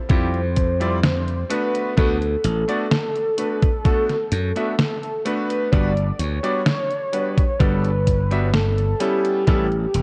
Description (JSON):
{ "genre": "vaporwave", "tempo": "64 BPM", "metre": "4/4", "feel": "straight", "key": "G lydian", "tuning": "A4 = 440 Hz", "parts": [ { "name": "warm velvety synth lead", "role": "melody", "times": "0.1-10.0 s", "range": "G4 to D5", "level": "-27 LUFS", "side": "equal", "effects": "chorus, tape echo" }, { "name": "clear electric grand piano", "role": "accompaniment", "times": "0.1-9.7 s", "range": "G3 to E5", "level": "-28 LUFS", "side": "equal", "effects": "subtle chorus" }, { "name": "glassy slap bass", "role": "bass", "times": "0.1-10.0 s", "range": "E1 to F#2", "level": "-24 LUFS", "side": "equal", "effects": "none" }, { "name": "detuned 8-bit digital drum machine", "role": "drums", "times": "0.1-10.0 s", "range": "hi-hat, snare drum", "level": "-26 LUFS", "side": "equal", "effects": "vintage 12-bit sampler grit, gated reverb" }, { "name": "electronic kick drum", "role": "drums", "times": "0.1-9.7 s", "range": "none", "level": "-21 LUFS", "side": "equal", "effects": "vintage 12-bit sampler grit" } ], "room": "light reverb", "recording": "cassette tape", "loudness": "-21 LUFS", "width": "mono", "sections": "0.0-10.0 A section", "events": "none", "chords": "0.0 Fmaj7sus2; 1.5 D6; 5.7 Gmaj7; 9.0 A9" }